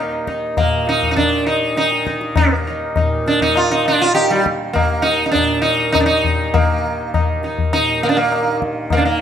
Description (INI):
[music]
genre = indian classical, Hindustani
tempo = 101 BPM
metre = 7/4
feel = straight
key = unclear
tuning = A4 = 440 Hz
[part]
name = sitar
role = melody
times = 0.0-9.2 s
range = G3 to G4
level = -16 LUFS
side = right 1 dB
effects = none
[part]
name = tanpura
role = drone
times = 0.0-9.2 s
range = Eb2 to Eb3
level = -25 LUFS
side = right 2 dB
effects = none
[part]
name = tabla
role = percussion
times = 0.3-9.1 s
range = none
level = -20 LUFS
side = left 4 dB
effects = none
[sound]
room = moderate recital hall reverb, RT60 1.6 s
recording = close, detailed microphones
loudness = -14 LUFS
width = side -9 dB against mid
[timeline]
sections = 0.0-9.2 A section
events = none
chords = none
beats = 0.57 1.17 1.77 | 2.37 2.97 3.56 4.16 4.76 5.35 5.95 | 6.54 7.13 7.73 8.32 8.91